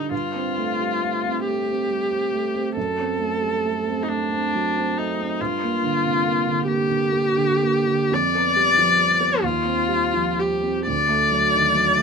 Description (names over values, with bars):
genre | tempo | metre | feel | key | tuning
classical, romantic duo for viola and grand piano | 45 BPM (dotted quarters) | 6/8 | uneven beats, rubato | G minor | A4 = 440 Hz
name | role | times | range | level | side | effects
clear viola | melody | 0.0-12.0 s | D4 to D5 | -20 LUFS | left 3 dB | none
dark baby grand piano | accompaniment | 0.0-12.0 s | D2 to D4 | -24 LUFS | right 5 dB | none
room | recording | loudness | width
light reverb | minimal, uncompressed stereo recording | -19 LUFS | side -5 dB against mid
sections
0.0-12.0 A section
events
none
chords
0.1 G9sus4; 2.8 D7/F#; 5.4 Gm; 8.1 G7/F; 9.4 Cm/Eb; 10.9 D